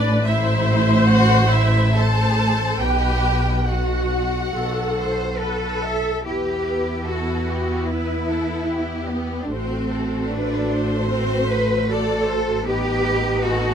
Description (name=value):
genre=classical, slow romantic movement for string orchestra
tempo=66-79 BPM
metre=4/4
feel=rubato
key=E minor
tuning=A4 = 440 Hz
part: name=clear symphonic violin section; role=melody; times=0.0-13.7 s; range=B4 to A5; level=-29 LUFS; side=right 1 dB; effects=none
part: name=rich chamber violin section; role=second line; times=0.0-13.7 s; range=D4 to D5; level=-27 LUFS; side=left 2 dB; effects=none
part: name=rich chamber viola section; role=accompaniment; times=0.0-13.7 s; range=A3 to E5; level=-25 LUFS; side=left 1 dB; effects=none
part: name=rich chamber double bass section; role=bass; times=0.0-13.7 s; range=A1 to E2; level=-23 LUFS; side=equal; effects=none
part: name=rich symphonic cello section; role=bass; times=0.0-13.7 s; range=A2 to C5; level=-23 LUFS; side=right 1 dB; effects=none
room=little or no reverb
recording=close, detailed microphones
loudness=-18 LUFS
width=side -8 dB against mid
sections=0.0-6.3 A section; 6.3-13.7 B section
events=none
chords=0.0 Am; 2.8 B5; 6.3 Em; 9.5 F#dim/A; 12.7 B7/A